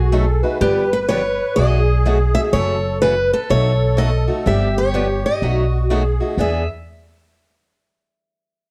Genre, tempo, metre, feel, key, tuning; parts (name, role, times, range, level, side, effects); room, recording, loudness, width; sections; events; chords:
acoustic string swing (jazz manouche); 125 BPM; 4/4; swing 63% on 8ths; A4 = 440 Hz
picked steel-string acoustic guitar; melody; 0.0-6.7 s; G4 to E5; -23 LUFS; equal; slapback echo, plate reverb
musette accordion; second line; 0.0-6.7 s; F#4 to B4; -25 LUFS; equal
upright bass; bass; 0.0-6.7 s; F#1 to E2; -21 LUFS; equal
picked steel-string acoustic guitar; accompaniment; 0.1-6.6 s; B2 to G#4; -26 LUFS; equal
light reverb; dark, warm production; -18 LUFS; mono
0.0-6.4 A section; 6.4-8.3 B section
0.0 B6; 0.6 G7; 1.6 B6; 2.5 F#m7; 3.5 B9; 4.5 G7; 5.4 B6; 6.4 E7